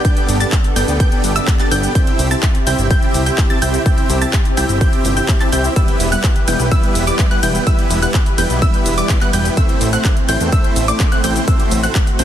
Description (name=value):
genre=EDM, festival progressive house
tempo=126 BPM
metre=4/4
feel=straight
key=unclear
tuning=A4 = 441 Hz
part: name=lush unison pad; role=sustained chords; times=0.0-12.2 s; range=C3 to B4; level=-24 LUFS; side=equal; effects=chorus, sidechain pumping
part: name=wide unison pluck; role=arpeggios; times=0.0-12.2 s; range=D6 to A6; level=-23 LUFS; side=equal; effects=sidechain pumping, ping-pong delay
part: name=dense compressed supersaw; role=riff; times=0.0-12.2 s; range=G3 to A5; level=-20 LUFS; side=right 1 dB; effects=sidechain pumping, ping-pong delay
part: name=big-room dance drum kit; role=drums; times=0.0-12.2 s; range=handclaps, hi-hat, ride cymbal, shaker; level=-23 LUFS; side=left 1 dB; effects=overdrive
part: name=electronic kick drum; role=drums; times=0.0-12.0 s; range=none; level=-15 LUFS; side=equal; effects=none
part: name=fat analog bass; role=bass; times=0.3-12.2 s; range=E1 to E2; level=-19 LUFS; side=equal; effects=tube saturation, sidechain pumping
room=digital ambience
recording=dense, heavily limited modern master, lossy compression artefacts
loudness=-12 LUFS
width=side -10 dB against mid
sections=0.0-12.2 A section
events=none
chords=0.0 G; 2.0 C; 5.8 Em; 9.6 Am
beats=| 0.05 0.52 1.00 1.48 | 1.95 2.43 2.90 3.38 | 3.86 4.33 4.81 5.29 | 5.76 6.24 6.71 7.19 | 7.67 8.14 8.62 9.10 | 9.57 10.05 10.52 11.00 | 11.48 11.95